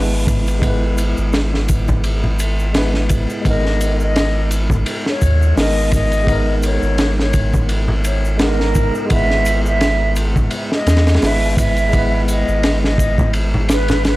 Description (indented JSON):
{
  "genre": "trip hop",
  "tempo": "85 BPM",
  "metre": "4/4",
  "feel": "swing 56% on 16ths",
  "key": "unclear",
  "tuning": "A4 = 440 Hz",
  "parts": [
    { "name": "tine electric piano", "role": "accompaniment", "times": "0.0-14.2 s", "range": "G#3 to B4", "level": "-23 LUFS", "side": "equal", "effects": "fast stereo tremolo, harmonic tremolo, vintage 12-bit sampler grit, low-pass filter" },
    { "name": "round analog bass", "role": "bass", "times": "0.0-14.2 s", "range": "G#1 to E2", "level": "-17 LUFS", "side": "equal", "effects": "none" },
    { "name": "crunchy breakbeat drum kit", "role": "drums", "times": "0.3-14.2 s", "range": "hi-hat, kick drum, ride cymbal, snare drum", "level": "-19 LUFS", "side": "equal", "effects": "none" },
    { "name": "egg shaker and congas", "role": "percussion", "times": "0.3-14.2 s", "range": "none", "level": "-25 LUFS", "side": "left 1 dB", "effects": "none" },
    { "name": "mellow concert flute", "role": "melody", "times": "3.5-14.2 s", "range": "A#4 to E5", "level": "-22 LUFS", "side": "equal", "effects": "tape echo" }
  ],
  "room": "small room ambience",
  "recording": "dry, gritty hardware recording, transformer saturation, vinyl crackle",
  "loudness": "-14 LUFS",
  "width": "side -18 dB against mid",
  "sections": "0.0-14.2 A section",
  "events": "kick drops out 13.3-14.2",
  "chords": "0.0 E/G#; 3.5 G#madd9; 9.1 E/G#"
}